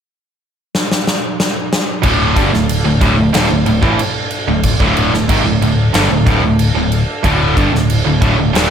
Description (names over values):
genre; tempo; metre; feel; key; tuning
hard rock; 92 BPM; 4/4; straight; unclear; A4 = 440 Hz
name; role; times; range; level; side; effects
huge arena drum kit; drums; 0.7-8.7 s; crash cymbal, kick drum, snare drum; -16 LUFS; equal; none
distorted electric guitar; riff; 2.0-8.7 s; D2 to E3; -17 LUFS; left 8 dB; distortion
tight distorted guitar; riff; 2.0-8.7 s; D2 to E3; -16 LUFS; right 9 dB; distortion
modern bright picked electric bass; bass; 2.0-8.7 s; D1 to A1; -18 LUFS; equal; none
overdriven tonewheel organ; sustained chords; 2.1-8.7 s; D4 to F5; -27 LUFS; equal; slow rotary speaker, chorus vibrato
room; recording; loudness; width
studio ambience; none; -11 LUFS; side -8 dB against mid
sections
0.0-2.0 A section; 2.0-8.7 B section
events
drum fill 0.7-2.0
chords
0.0 N.C.; 2.0 Dm